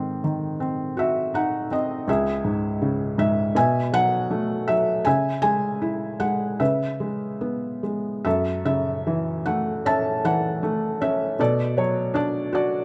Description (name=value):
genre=classical, lyrical solo piano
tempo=71-82 BPM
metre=4/4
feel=rubato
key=C# minor, F# minor from 8.3 s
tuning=A4 = 438 Hz
part: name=felt-muted upright piano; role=solo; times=0.0-12.8 s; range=C#2 to A5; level=-24 LUFS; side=equal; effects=none
room=light reverb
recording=close, detailed microphones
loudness=-24 LUFS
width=mono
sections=0.0-8.3 A section; 8.3-12.8 B section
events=none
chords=0.0 G#7; 2.1 C#m; 3.6 B7sus4; 5.1 C#m; 6.6 C#m7; 8.3 F#m7; 11.4 Bm7